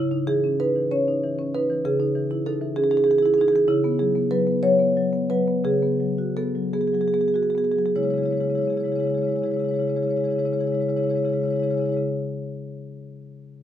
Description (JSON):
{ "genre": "classical, contemporary piece for solo marimba", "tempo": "47-66 BPM (dotted quarters)", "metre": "6/8", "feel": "rubato", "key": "C# minor", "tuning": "A4 = 440 Hz", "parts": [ { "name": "marimba with medium mallets", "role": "solo", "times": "0.0-12.0 s", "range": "C#3 to C#5", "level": "-20 LUFS", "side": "equal", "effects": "none" } ], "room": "light reverb", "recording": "minimal, uncompressed stereo recording", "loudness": "-20 LUFS", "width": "side -10 dB against mid", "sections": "0.0-8.0 A section; 8.0-12.8 B section", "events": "slowing down 2.8-8.0", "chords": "0.0 C#madd9; 3.7 C#7sus4; 8.0 C#m", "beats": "0.91 | 1.83 2.75 | 3.67 4.62 | 5.64 6.74 | 7.96 9.16 | 10.36 11.55" }